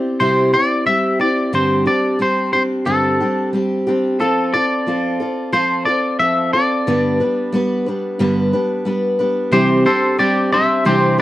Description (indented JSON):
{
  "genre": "country",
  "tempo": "90 BPM",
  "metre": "4/4",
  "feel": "straight",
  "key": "C major",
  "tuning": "A4 = 440 Hz",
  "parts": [
    { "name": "twangy electric guitar", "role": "melody", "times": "0.0-11.2 s", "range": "G4 to E5", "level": "-17 LUFS", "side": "left 1 dB", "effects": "none" },
    { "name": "picked steel-string acoustic guitar", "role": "accompaniment", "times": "0.0-11.2 s", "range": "G2 to B4", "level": "-17 LUFS", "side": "equal", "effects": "none" }
  ],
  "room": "light reverb",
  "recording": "dry, close 1970s-style studio recording",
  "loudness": "-14 LUFS",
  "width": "side -15 dB against mid",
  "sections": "0.0-9.5 A section; 9.5-11.2 B section",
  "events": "none",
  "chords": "0.0 C; 1.5 Gsus4; 4.2 F; 6.9 G; 9.5 Cadd9",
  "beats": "0.21 0.88 | 1.54 2.21 2.88 3.54 | 4.21 4.87 5.54 6.20 | 6.87 7.53 8.20 8.87 | 9.53 10.20 10.86"
}